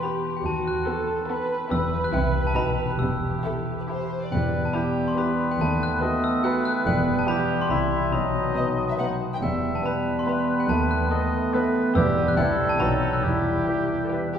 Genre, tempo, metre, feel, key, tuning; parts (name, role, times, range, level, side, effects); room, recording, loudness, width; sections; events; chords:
cinematic; 141 BPM; 3/4; straight; E minor; A4 = 441 Hz
glockenspiel with soft plastic mallets; melody; 0.0-14.3 s; G5 to F#6; -29 LUFS; left 2 dB
muted studio violin section; melody; 0.0-14.4 s; A4 to G5; -36 LUFS; left 1 dB
muted studio violin section; second line; 0.0-14.4 s; B3 to B4; -37 LUFS; equal
muted studio viola section; accompaniment; 0.0-14.4 s; B3 to B4; -32 LUFS; right 2 dB
concert harp; arpeggios; 0.0-14.4 s; B2 to E5; -31 LUFS; left 3 dB
muted studio cello section; bass; 0.5-13.6 s; D#2 to C3; -31 LUFS; right 2 dB
muted studio double bass section; bass; 0.5-13.6 s; E1 to D#2; -30 LUFS; right 1 dB
warm clarinet; second line; 4.3-14.3 s; B3 to B4; -32 LUFS; equal
warm oboe; second line; 4.3-14.3 s; G4 to E5; -30 LUFS; right 1 dB
warm bassoon; accompaniment; 4.3-14.3 s; F#3 to A3; -29 LUFS; equal
mellow French horn section; sustained chords; 4.3-14.3 s; F#3 to E4; -29 LUFS; right 1 dB
wet concert hall reverb, RT60 2.0 s; heard from further back in the room; -21 LUFS; side -8 dB against mid
0.0-4.3 A section; 4.3-14.4 A section
0.5 B7/D#; 1.7 Em; 2.1 C; 2.6 B; 3.0 Em; 5.6 B7/D#; 6.9 Em; 7.7 C; 8.1 B; 9.4 Em; 10.7 B7/D#; 12.0 Em; 12.4 C; 12.8 B; 13.2 Em